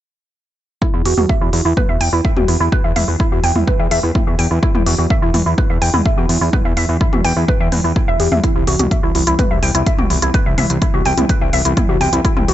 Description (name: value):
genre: melodic techno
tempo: 126 BPM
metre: 4/4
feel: straight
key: unclear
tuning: A4 = 443 Hz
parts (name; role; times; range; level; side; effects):
- woody wave-folded pluck; arpeggios; 0.8-12.5 s; E4 to G5; -19 LUFS; equal; wide subtle chorus, sidechain pumping, ping-pong delay
- analog drone; drone; 2.0-12.5 s; E2; -26 LUFS; right 1 dB; none
- electronic kick drum; drums; 0.8-12.3 s; none; -17 LUFS; equal; none
- fat analog bass; bass; 0.9-12.5 s; E1 to E2; -18 LUFS; equal; tube saturation, sidechain pumping
- techno drum kit; drums; 1.1-12.5 s; hi-hat, toms; -22 LUFS; left 1 dB; overdrive, sidechain pumping on hats, sidechain pumping on toms
room: digital ambience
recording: nothing above 7.9 kHz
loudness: -13 LUFS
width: side -12 dB against mid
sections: 0.8-12.5 A section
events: none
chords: 0.8 N.C.; 8.4 C